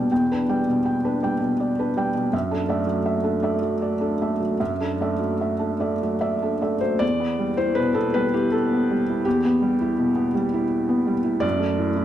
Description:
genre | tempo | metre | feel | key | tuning
neoclassical minimalist piano | 74-84 BPM | 3/4 | rubato | E minor | A4 = 440 Hz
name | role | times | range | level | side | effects
felt-muted upright piano | solo | 0.0-12.0 s | E2 to G5 | -20 LUFS | equal | none
room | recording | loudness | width
moderate recital hall reverb, RT60 1.4 s | none | -20 LUFS | side -11 dB against mid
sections
0.0-7.0 A section; 7.0-12.0 B section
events
none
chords
0.0 Em7; 2.3 Dadd9/F#; 7.0 Em; 11.4 Dadd9/F#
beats
| 0.11 0.85 1.59 | 2.33 3.06 3.81 | 4.60 5.41 6.22 | 7.02 7.77 8.52 | 9.26 9.98 10.71 | 11.44

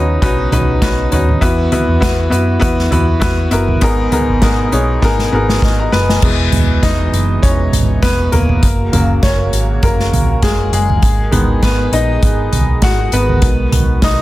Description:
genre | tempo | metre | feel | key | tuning
piano-driven pop | 100 BPM | 4/4 | swing 56% on 16ths | unclear | A4 = 440 Hz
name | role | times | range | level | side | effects
bright upright piano | accompaniment | 0.0-14.2 s | G#2 to A#5 | -16 LUFS | left 2 dB | none
warm analog pad | sustained chords | 0.0-14.2 s | B2 to G#4 | -24 LUFS | right 4 dB | chorus
vintage muted picked electric bass | bass | 0.0-14.2 s | E1 to F#2 | -16 LUFS | equal | none
unplugged drum kit | drums | 0.2-14.2 s | crash cymbal, hi-hat, kick drum, snare drum, toms | -15 LUFS | equal | none
room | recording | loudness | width
light reverb | dense, heavily limited modern master | -11 LUFS | side -16 dB against mid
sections
0.0-6.2 A section; 6.2-14.2 B section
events
drum fill 5.0-6.2; upright piano solo 6.2-14.2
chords
0.0 Badd9; 1.4 Esus2; 3.8 G#madd9; 6.2 E; 8.6 F#; 11.0 G#m; 13.4 B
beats
0.22 0.82 | 1.42 2.02 2.62 3.22 | 3.82 4.42 5.02 5.62 | 6.22 6.82 7.42 8.02 | 8.62 9.22 9.82 10.42 | 11.02 11.62 12.22 12.82 | 13.42 14.02

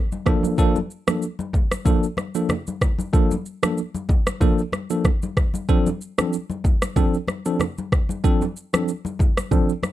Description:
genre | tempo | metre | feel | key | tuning
afrobeats | 94 BPM | 4/4 | swing 55% on 16ths | unclear | A4 = 440 Hz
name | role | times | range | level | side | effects
afro-pop drum kit | drums | 0.1-9.9 s | kick drum, rim click, shaker | -20 LUFS | equal | overdrive
congas | percussion | 0.1-9.9 s | none | -30 LUFS | left 3 dB | none
bell-like tine electric piano | accompaniment | 0.3-9.7 s | F3 to A4 | -22 LUFS | right 1 dB | medium stereo tremolo
room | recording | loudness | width
little or no reverb | dark, warm production | -19 LUFS | side -14 dB against mid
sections
0.0-9.9 A section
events
none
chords
0.3 Bbmaj7; 5.7 Dm7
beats
| 0.58 1.22 1.86 2.50 | 3.13 3.77 4.41 5.05 | 5.69 6.33 6.96 7.60 | 8.24 8.88 9.52

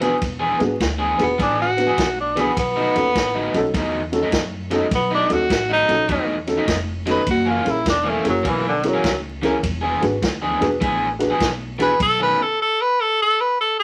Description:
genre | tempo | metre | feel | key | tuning
electric blues shuffle | 102 BPM | 4/4 | swing 66% on 8ths | unclear | A4 = 440 Hz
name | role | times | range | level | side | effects
dark concert grand piano | accompaniment | 0.0-11.9 s | B3 to B4 | -25 LUFS | equal | none
overdriven electric guitar | riff | 0.0-12.4 s | F#2 to G#4 | -25 LUFS | equal | none
upright bass | bass | 0.0-12.3 s | E1 to F#2 | -30 LUFS | equal | none
swinging big-band drum kit | drums | 0.0-12.2 s | crash cymbal, kick drum, ride cymbal, snare drum | -29 LUFS | equal | none
clear tenor saxophone | melody | 1.2-13.8 s | D3 to B4 | -21 LUFS | equal | none
room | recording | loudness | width
moderate studio reverb, RT60 0.6 s | vinyl crackle | -20 LUFS | mono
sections
0.0-13.8 A section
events
tenor saxophone solo 0.0-13.8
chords
0.0 E7; 2.6 B7; 7.3 F#7; 9.6 E7; 12.0 B9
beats
| 0.22 0.80 1.39 1.98 | 2.56 3.15 3.74 4.33 | 4.91 5.50 6.09 6.68 | 7.27 7.86 8.45 9.04 | 9.63 10.22 10.81 11.40 | 12.00 12.59 13.18 13.78

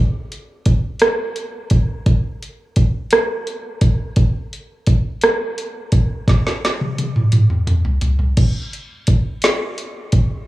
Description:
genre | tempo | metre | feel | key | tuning
R&B | 57 BPM (dotted quarters) | 6/8 | straight | none | none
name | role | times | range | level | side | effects
smooth R&B drum kit | drums | 0.3-10.3 s | crash cymbal, hi-hat, kick drum, rim click, snare drum, toms | -15 LUFS | equal | none
room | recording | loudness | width
light reverb | worn, warbling old tape, cassette tape, warbly pitch drift, small room reverb | -16 LUFS | side -17 dB against mid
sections
0.0-8.4 A section; 8.4-10.5 B section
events
drum fill 6.3-8.4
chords
none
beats
1.01 | 2.06 3.11 | 4.17 5.22 | 6.27 7.33 | 8.38 9.43

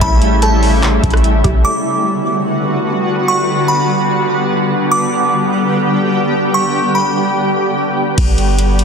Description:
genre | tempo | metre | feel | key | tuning
hip hop, atmospheric cloud-rap | 147 BPM | 4/4 | half-time | G lydian | A4 = 435 Hz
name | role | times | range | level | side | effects
delicate synth tine bell | melody | 0.0-7.3 s | A5 to D6 | -19 LUFS | right 1 dB | chorus, tape echo
shimmering ambient pad | sustained chords | 0.0-8.8 s | C#3 to G4 | -14 LUFS | equal | chorus, built-in reverb, sidechain pumping
hollow square pluck | arpeggios | 0.0-1.6 s | G4 to A5 | -29 LUFS | right 4 dB | none
warm 808-style bass | bass | 0.0-1.6, 8.2-8.8 s | G1 to A1 | -14 LUFS | equal | none
booming analog drum machine | drums | 0.0-1.6, 8.2-8.8 s | crash cymbal, handclaps, hi-hat, kick drum, rim click | -15 LUFS | equal | vintage 12-bit sampler grit
room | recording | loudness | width
light reverb | dense, heavily limited modern master | -12 LUFS | side -6 dB against mid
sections
0.0-1.6 A section; 1.6-8.2 B section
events
none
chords
0.0 A7; 1.6 Gmaj7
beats
| 0.01 0.42 0.83 1.24 | 1.65 2.06 2.46 2.87 | 3.28 3.69 4.10 4.50 | 4.91 5.32 5.73 6.14 | 6.55 6.95 7.36 7.77 | 8.18 8.59

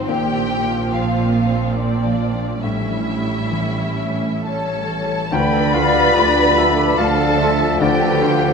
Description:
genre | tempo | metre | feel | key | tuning
cinematic, emotional film score for orchestra | 63-73 BPM | 3/4 | rubato | D dorian from 5.3 s | A4 = 440 Hz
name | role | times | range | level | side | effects
muted studio violin section | melody | 0.0-8.5 s | D5 to B5 | -22 LUFS | left 3 dB | none
muted symphonic violin section | second line | 0.0-8.5 s | D4 to B4 | -25 LUFS | equal | none
clear grand piano | accompaniment | 0.0-8.5 s | D2 to D5 | -24 LUFS | left 1 dB | none
muted symphonic viola section | accompaniment | 0.0-8.3 s | F3 to F4 | -28 LUFS | right 1 dB | none
concert harp | arpeggios | 0.0-8.5 s | Ab2 to D6 | -28 LUFS | left 7 dB | none
muted symphonic cello section | bass | 0.0-8.5 s | A2 to D3 | -23 LUFS | right 5 dB | none
muted symphonic double bass section | bass | 0.0-8.5 s | A1 to D2 | -25 LUFS | right 5 dB | none
mellow small flute group | second line | 4.5-8.5 s | B4 to D5 | -22 LUFS | left 4 dB | none
mellow clarinet | second line | 5.3-8.5 s | C5 to G5 | -24 LUFS | left 1 dB | none
dark French horn section | sustained chords | 5.3-8.5 s | F3 to A4 | -25 LUFS | left 2 dB | none
room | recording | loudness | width
wet scoring stage reverb, RT60 1.9 s | none | -15 LUFS | side -5 dB against mid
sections
0.0-5.3 A section; 5.3-8.5 B section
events
none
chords
0.1 Bbadd9; 2.6 A7; 5.3 Dm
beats
| 0.09 0.92 1.76 | 2.63 3.52 4.45 | 5.33 6.16 6.98 | 7.82

